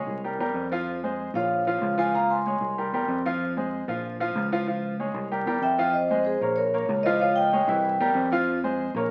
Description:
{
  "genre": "latin, salsa",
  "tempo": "189 BPM",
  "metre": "4/4",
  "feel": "straight",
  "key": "F minor",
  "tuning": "A4 = 439 Hz",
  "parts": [
    { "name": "clear baby grand piano", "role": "accompaniment", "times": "0.0-9.1 s", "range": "E3 to F5", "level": "-30 LUFS", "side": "equal", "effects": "none" },
    { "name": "fingered electric bass", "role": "bass", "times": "0.1-9.1 s", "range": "Bb1 to F2", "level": "-33 LUFS", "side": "equal", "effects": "none" },
    { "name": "vibraphone with medium mallets", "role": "melody", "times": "1.4-3.2, 5.6-8.3 s", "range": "Ab4 to C6", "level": "-26 LUFS", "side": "equal", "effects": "none" }
  ],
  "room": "moderate studio reverb, RT60 0.9 s",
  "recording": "very old 78 rpm record, vinyl crackle",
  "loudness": "-26 LUFS",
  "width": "mono",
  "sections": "0.0-5.9 A section; 5.9-9.1 B section",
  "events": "none",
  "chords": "0.2 C7; 0.9 Fm; 1.5 Bbm; 2.1 Db; 2.8 C7; 3.4 Fm; 4.0 Bbm; 4.7 Db; 5.3 C7; 5.9 Fm7; 6.6 Bbm; 7.2 Dbadd9; 7.8 C7; 8.5 Fm",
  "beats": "0.23 0.55 | 0.87 1.19 1.50 1.82 | 2.14 2.46 2.77 3.09 | 3.41 3.73 4.04 4.36 | 4.68 4.99 5.31 5.63 | 5.94 6.26 6.58 6.89 | 7.21 7.53 7.84 8.16 | 8.47 8.79 9.11"
}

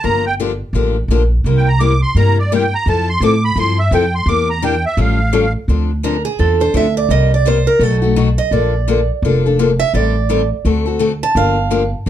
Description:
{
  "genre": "acoustic string swing (jazz manouche)",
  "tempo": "170 BPM",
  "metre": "4/4",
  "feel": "swing 60% on 8ths",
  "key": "D minor",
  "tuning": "A4 = 440 Hz",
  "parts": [
    { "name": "musette accordion", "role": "melody", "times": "0.0-5.5 s", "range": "D5 to D6", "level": "-18 LUFS", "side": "right 3 dB", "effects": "none" },
    { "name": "picked steel-string acoustic guitar", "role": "accompaniment", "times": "0.0-12.1 s", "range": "B2 to A4", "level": "-18 LUFS", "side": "left 6 dB", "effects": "none" },
    { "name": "upright bass", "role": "bass", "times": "0.0-12.1 s", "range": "F1 to A2", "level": "-16 LUFS", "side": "right 1 dB", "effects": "none" },
    { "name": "picked steel-string acoustic guitar", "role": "second line", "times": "6.0-11.9 s", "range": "G#4 to A5", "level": "-17 LUFS", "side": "right 5 dB", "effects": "none" }
  ],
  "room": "moderate studio ambience, RT60 0.5 s",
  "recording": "dark, warm production",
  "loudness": "-12 LUFS",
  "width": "side -11 dB against mid",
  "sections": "0.0-5.7 A section; 5.7-12.1 A section",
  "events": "accordion solo 0.0-5.7; steel-string acoustic guitar solo 5.7-12.1",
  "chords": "0.1 Gm7; 1.5 C7; 2.9 Fmaj7; 4.3 Em7b5; 5.0 Aaug7; 5.7 Dm7; 7.1 Cm7; 7.8 B7; 8.5 Bbmaj7; 9.9 Am7b5; 10.7 D7; 11.4 Gm7",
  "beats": "| 0.05 0.40 0.76 1.11 | 1.46 1.81 2.17 2.52 | 2.87 3.23 3.58 3.93 | 4.29 4.64 4.99 5.34 | 5.70 6.05 6.41 6.76 | 7.11 7.47 7.82 8.18 | 8.53 8.88 9.24 9.59 | 9.95 10.30 10.65 11.01 | 11.36 11.72 12.07"
}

